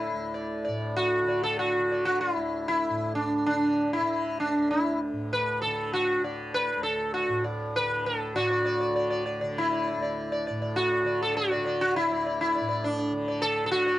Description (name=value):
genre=indian classical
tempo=99 BPM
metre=4/4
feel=straight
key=D raga bhupali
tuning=A4 = 437 Hz
part: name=sitar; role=melody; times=0.0-14.0 s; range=D4 to D5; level=-25 LUFS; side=equal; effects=none
part: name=tanpura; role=drone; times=0.0-14.0 s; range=D2 to D3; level=-35 LUFS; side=equal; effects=cassette tape
room=little or no reverb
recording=home recording on cassette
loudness=-25 LUFS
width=side -14 dB against mid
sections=0.0-8.4 A section; 8.4-14.0 B section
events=speeding up 0.0-14.0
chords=none